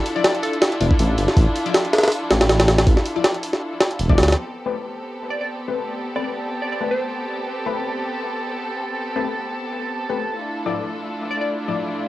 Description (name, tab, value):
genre	drum and bass, jungle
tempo	160 BPM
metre	4/4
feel	swing 55% on 16ths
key	A minor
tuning	A4 = 440 Hz
part	rich studio string section	sustained chords	0.0-12.1 s	A3 to A4	-27 LUFS	equal	cassette tape
part	jungle sampler-style drum kit	drums	0.1-4.4 s	hi-hat, kick drum, snare drum	-16 LUFS	equal	none
part	glassy wavetable pluck	melody	0.2-0.7, 5.3-7.2, 11.3-11.5 s	A4 to D5	-29 LUFS	left 1 dB	chorus, dub echo
part	orchestra-hit-like synth stab	stabs	0.2-11.8 s	A2 to D5	-28 LUFS	left 6 dB	built-in reverb, cassette tape, dub echo
part	dark detuned saw bass	bass	0.8-4.4 s	E1 to D2	-19 LUFS	equal	none
part	drifting glass-harmonics texture	texture	5.0-12.1 s	A5	-31 LUFS	right 3 dB	chorus, built-in reverb, cassette tape
room	light reverb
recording	home recording on cassette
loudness	-19 LUFS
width	side -16 dB against mid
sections	0.0-4.4 A section; 4.4-12.1 B section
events	drop 0.0-4.4; filter sweep on synth stab 4.4-12.1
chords	0.0 Dmadd9; 4.4 Am9; 10.4 Dmadd9/A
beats	0.24 0.62 0.99 | 1.37 1.74 2.12 2.49 | 2.87 3.24 3.62 3.99 | 4.37 4.74 5.12 5.49 | 5.87 6.24 6.62 6.99 | 7.37 7.74 8.12 8.49 | 8.87 9.24 9.62 9.99 | 10.37 10.74 11.12 11.49 | 11.87